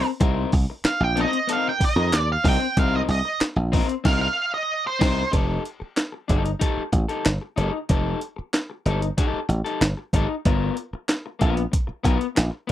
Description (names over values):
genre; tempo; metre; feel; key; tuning
funk; 94 BPM; 4/4; straight; unclear; A4 = 440 Hz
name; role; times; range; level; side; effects
octave-fuzz lead guitar; melody; 0.0-5.3 s; C5 to G5; -23 LUFS; right 3 dB; distortion
electric guitar at the edge of break-up; accompaniment; 0.0-12.7 s; B3 to Bb4; -27 LUFS; left 6 dB; none
dry thumbed slap bass; bass; 0.2-12.7 s; F1 to F2; -23 LUFS; equal; none
breakbeat sampler-style drum kit; drums; 0.2-12.7 s; crash cymbal, handclaps, hi-hat, kick drum, snare drum; -22 LUFS; equal; none
room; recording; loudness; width
little or no reverb; dry, close 1970s-style studio recording; -20 LUFS; side -12 dB against mid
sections
0.0-5.3 A section; 5.3-12.7 B section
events
lead electric guitar solo 0.0-5.3; band accent 4.1-5.3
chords
0.0 Cm7; 5.3 F9 (rootless); 10.5 G7#9 (rootless)